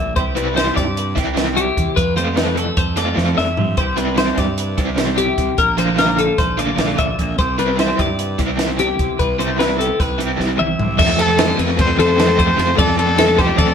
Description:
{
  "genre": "math rock and midwest emo",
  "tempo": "299 BPM (eighths)",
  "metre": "9/8",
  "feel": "straight",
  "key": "C major",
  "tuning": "A4 = 435 Hz",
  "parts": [
    { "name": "twelve-string electric guitar", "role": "accompaniment", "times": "0.0-11.0 s", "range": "Bb2 to B4", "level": "-26 LUFS", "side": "right 8 dB", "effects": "none" },
    { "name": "twelve-string electric guitar", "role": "arpeggios", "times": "0.0-13.7 s", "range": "G4 to E5", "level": "-19 LUFS", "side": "left 5 dB", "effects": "spring reverb" },
    { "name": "fuzz fingered electric bass", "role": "bass", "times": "0.0-13.7 s", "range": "Bb1 to F3", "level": "-23 LUFS", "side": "right 1 dB", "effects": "overdrive" },
    { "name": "compact cocktail drum kit", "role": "drums", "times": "0.2-13.7 s", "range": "crash cymbal, hi-hat, kick drum, ride cymbal, snare drum, toms", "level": "-20 LUFS", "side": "right 1 dB", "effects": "none" },
    { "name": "crunchy overdriven guitar", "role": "riff", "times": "0.4-13.7 s", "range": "F2 to F4", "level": "-20 LUFS", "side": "right 1 dB", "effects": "tremolo" },
    { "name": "bright trumpet", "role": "melody", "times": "11.2-13.7 s", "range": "G4 to C5", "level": "-19 LUFS", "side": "left 1 dB", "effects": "none" }
  ],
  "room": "moderate studio reverb, RT60 0.8 s",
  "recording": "band playing live in one room",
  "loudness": "-14 LUFS",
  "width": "side -7 dB against mid",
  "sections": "0.0-11.0 A section; 11.0-13.7 B section",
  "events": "drum fill 3.2-3.8, 10.4-11.0",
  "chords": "0.2 Cmaj9; 2.0 Fmaj7; 3.8 Cmaj9; 5.6 Bbmaj7; 7.4 Cmaj9; 9.2 Cmaj7; 11.0 F",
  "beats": "| 0.16 0.36 0.56 0.77 0.96 1.17 1.37 1.57 1.77 | 1.97 2.17 2.37 2.57 2.77 2.97 3.17 3.37 3.57 | 3.77 3.97 4.17 4.38 4.58 4.78 4.98 5.18 5.38 | 5.58 5.78 5.98 6.18 6.38 6.58 6.78 6.98 7.18 | 7.38 7.59 7.79 7.99 8.19 8.39 8.59 8.79 8.99 | 9.19 9.39 9.59 9.79 9.99 10.19 10.39 10.59 10.79 | 10.99 11.19 11.39 11.59 11.79 11.99 12.19 12.39 12.59 | 12.78 12.98 13.18 13.38 13.58"
}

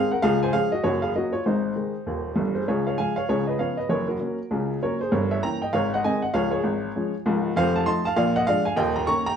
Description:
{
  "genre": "jazz, stride piano",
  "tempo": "196 BPM",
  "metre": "4/4",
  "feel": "swing 62% on 8ths",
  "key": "Db major",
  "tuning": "A4 = 440 Hz",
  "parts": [
    { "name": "warm upright piano", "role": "solo", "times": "0.0-9.4 s", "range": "Db1 to Db6", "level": "-22 LUFS", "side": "equal", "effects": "none" }
  ],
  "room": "wet large studio reverb, RT60 0.8 s",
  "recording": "band playing live in one room",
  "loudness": "-22 LUFS",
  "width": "side -7 dB against mid",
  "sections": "0.0-2.7 A section; 2.7-9.4 A section",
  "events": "none",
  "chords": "0.2 Db; 0.8 Gb; 1.5 Ab; 2.7 Db; 3.3 Db7; 3.9 Gb; 5.1 Gdim7; 5.7 Ab; 6.3 Db; 7.6 F7; 8.2 Bb7; 8.8 Eb7",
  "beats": "| 0.23 0.54 0.84 1.15 | 1.45 1.76 2.07 2.37 | 2.68 2.98 3.29 3.60 | 3.90 4.21 4.51 4.82 | 5.12 5.43 5.73 6.04 | 6.34 6.65 6.96 7.26 | 7.57 7.87 8.18 8.48 | 8.79 9.10"
}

